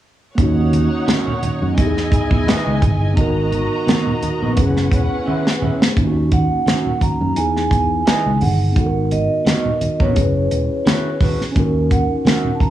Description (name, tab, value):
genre	lush 1970s-style soul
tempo	86 BPM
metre	4/4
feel	swing 54% on 16ths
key	unclear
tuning	A4 = 438 Hz
part	warm studio string section	second line	0.4-5.9 s	C#4 to A#5	-25 LUFS	right 1 dB	cassette tape
part	mellow tine electric piano	accompaniment	0.4-12.7 s	A#3 to B4	-22 LUFS	left 1 dB	medium stereo tremolo, cassette tape
part	fingered electric bass	bass	0.4-12.6 s	E1 to F#2	-19 LUFS	equal	none
part	tight funk drum kit	drums	0.4-12.7 s	hi-hat, kick drum, snare drum	-18 LUFS	equal	cassette tape
part	congas	percussion	0.4-12.7 s	none	-24 LUFS	right 2 dB	none
part	electric guitar through a small old amp	riff	1.1-12.5 s	B3 to D#5	-24 LUFS	right 4 dB	cassette tape
part	vibraphone with medium mallets	melody	6.3-12.7 s	C#5 to A#5	-22 LUFS	right 3 dB	none
room	light reverb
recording	home recording on cassette, studio ambience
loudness	-15 LUFS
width	side -12 dB against mid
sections	0.4-6.0 A section; 6.0-12.7 B section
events	drum fill 5.3-6.0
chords	0.4 D#m7; 1.8 C#m9/E (rootless); 3.2 G#m9; 4.6 F#7sus4; 6.0 D#m7; 7.4 C#m9/E (rootless); 8.8 G#m9; 10.2 F#7sus4; 11.6 D#m7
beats	| 0.38 1.08 1.78 2.47 | 3.17 3.87 4.57 5.27 | 5.97 6.67 7.36 8.06 | 8.76 9.46 10.16 10.86 | 11.56 12.25